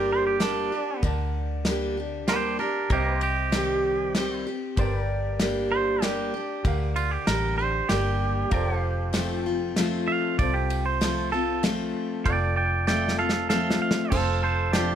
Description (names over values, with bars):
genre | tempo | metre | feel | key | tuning
honky-tonk and classic country | 96 BPM | 3/4 | straight | G minor | A4 = 440 Hz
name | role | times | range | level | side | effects
twangy electric guitar | second line | 0.0-14.9 s | Bb3 to G5 | -28 LUFS | right 5 dB | analog delay
clear upright piano | accompaniment | 0.0-14.9 s | C4 to A5 | -37 LUFS | right 4 dB | none
picked steel-string acoustic guitar | accompaniment | 0.0-14.9 s | F2 to G4 | -28 LUFS | left 2 dB | none
pedal steel guitar | sustained chords | 0.0-14.9 s | A4 to G5 | -36 LUFS | left 2 dB | none
vintage muted fingered electric bass | bass | 0.0-14.9 s | F1 to D2 | -29 LUFS | equal | none
natural country drum kit | drums | 0.4-14.9 s | crash cymbal, hi-hat, kick drum, ride cymbal, snare drum | -28 LUFS | equal | none
room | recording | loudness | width
light reverb | none | -23 LUFS | side -9 dB against mid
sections
0.0-14.1 A section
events
clean electric guitar solo 0.0-14.1; drum fill 12.9-14.1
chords
0.0 Gm; 2.9 Cm; 4.8 Gm; 8.5 F